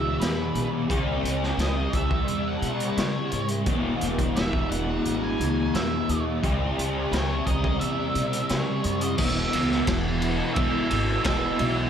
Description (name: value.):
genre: rock, shoegaze and dream pop.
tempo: 87 BPM.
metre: 4/4.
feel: straight.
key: E major.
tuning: A4 = 440 Hz.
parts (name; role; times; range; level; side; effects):
octave-fuzz lead guitar; melody; 0.0-11.9 s; B4 to G#5; -32 LUFS; right 3 dB; distortion, tape echo.
fuzz guitar; riff; 0.0-11.9 s; E2 to C#4; -26 LUFS; equal; distortion, ensemble chorus.
upright bass; bass; 0.0-11.9 s; E1 to C#3; -29 LUFS; equal; none.
raw garage drum kit; drums; 0.2-11.8 s; crash cymbal, hi-hat, kick drum, ride cymbal, snare drum; -28 LUFS; equal; none.
room: moderate plate reverb, RT60 1.9 s, studio reverb.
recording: dreamy mix soaked in reverb.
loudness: -23 LUFS.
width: side -8 dB against mid.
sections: 0.0-9.2 A section; 9.2-11.9 B section.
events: none.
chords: 0.0 E5; 0.9 C#5; 3.7 E5; 6.4 C#m; 9.2 E5.